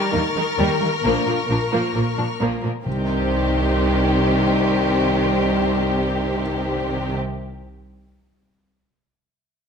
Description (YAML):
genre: cinematic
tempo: 67 BPM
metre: 4/4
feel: straight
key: C minor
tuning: A4 = 441 Hz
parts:
  - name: rich studio violin section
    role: melody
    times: 0.0-7.2 s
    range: G4 to Bb4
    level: -25 LUFS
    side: left 4 dB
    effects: none
  - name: warm symphonic violin section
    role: second line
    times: 0.0-7.2 s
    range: G3 to Eb4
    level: -27 LUFS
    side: left 1 dB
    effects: none
  - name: rich studio viola section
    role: accompaniment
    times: 0.0-7.2 s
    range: Eb3 to G3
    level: -28 LUFS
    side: right 1 dB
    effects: none
  - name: warm studio violin section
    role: texture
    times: 0.0-5.9 s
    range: C6 to Ab6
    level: -31 LUFS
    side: left 3 dB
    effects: none
  - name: warm studio cello section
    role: riff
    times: 0.1-2.7 s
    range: Bb2 to Eb4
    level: -28 LUFS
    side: equal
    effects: none
  - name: warm studio cello section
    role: bass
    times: 0.1-7.2 s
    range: Bb2 to Eb3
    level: -27 LUFS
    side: right 2 dB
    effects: none
  - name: warm studio double bass section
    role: bass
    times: 0.1-7.2 s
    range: Bb1 to Eb2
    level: -26 LUFS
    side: right 2 dB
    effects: none
  - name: warm trombone section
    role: sustained chords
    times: 1.0-7.2 s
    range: G2 to G3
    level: -27 LUFS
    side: right 4 dB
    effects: none
  - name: dark French horn section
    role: sustained chords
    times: 1.1-7.2 s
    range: Bb3 to Eb4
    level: -27 LUFS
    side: left 6 dB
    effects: none
  - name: timpani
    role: percussion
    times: 2.9-7.3 s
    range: C3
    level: -30 LUFS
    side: left 1 dB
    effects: none
room: moderate scoring stage reverb, RT60 1.4 s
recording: none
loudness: -18 LUFS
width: side -6 dB against mid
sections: 0.0-2.9 A section; 2.9-6.4 B section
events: none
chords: 0.0 Eb; 1.0 Bb; 2.9 Cm